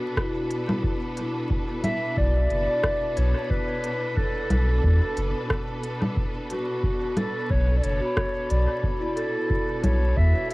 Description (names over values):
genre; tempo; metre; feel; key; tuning
ambient dub; 90 BPM; 4/4; swing 55% on 16ths; B minor; A4 = 440 Hz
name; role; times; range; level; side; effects
clear studio string section; sustained chords; 0.0-10.5 s; B2 to B4; -32 LUFS; equal; cassette tape
vibraphone with soft mallets; arpeggios; 0.0-10.5 s; E4 to B5; -33 LUFS; left 2 dB; cassette tape, analog delay
electronic kick drum; drums; 0.2-10.3 s; none; -28 LUFS; equal; studio reverb, cassette tape
organic electronic drum kit; drums; 0.2-10.5 s; congas, hi-hat, rim click; -30 LUFS; equal; overdrive, studio reverb, cassette tape, dub echo
mellow clarinet; melody; 1.8-10.5 s; F#4 to E5; -28 LUFS; equal; dub echo
soft dub sub bass; bass; 2.2-10.3 s; F#1 to E2; -21 LUFS; equal; transformer saturation
room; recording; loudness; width
light reverb; home recording on cassette, vinyl crackle; -22 LUFS; side -21 dB against mid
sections
0.0-10.5 A section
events
none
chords
0.0 Bm7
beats
0.17 | 0.84 1.50 2.17 2.84 | 3.50 4.17 4.84 5.50 | 6.17 6.84 7.50 8.17 | 8.84 9.50 10.17